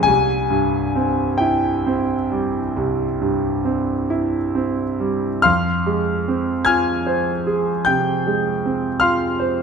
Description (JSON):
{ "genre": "classical, romantic nocturne for solo piano", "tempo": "43-54 BPM (dotted quarters)", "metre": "12/8", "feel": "rubato", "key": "F minor", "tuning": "A4 = 440 Hz", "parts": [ { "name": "clear concert grand piano", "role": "solo", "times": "0.0-9.6 s", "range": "C2 to Ab6", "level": "-17 LUFS", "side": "equal", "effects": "none" } ], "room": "moderate recital hall reverb, RT60 1.2 s", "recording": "none", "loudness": "-17 LUFS", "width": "side -6 dB against mid", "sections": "0.0-5.4 A section; 5.4-9.6 B section", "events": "none", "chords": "0.1 C; 5.4 Fm", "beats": "| 0.06 1.41 2.76 4.11 | 5.45 6.67 7.86 9.02" }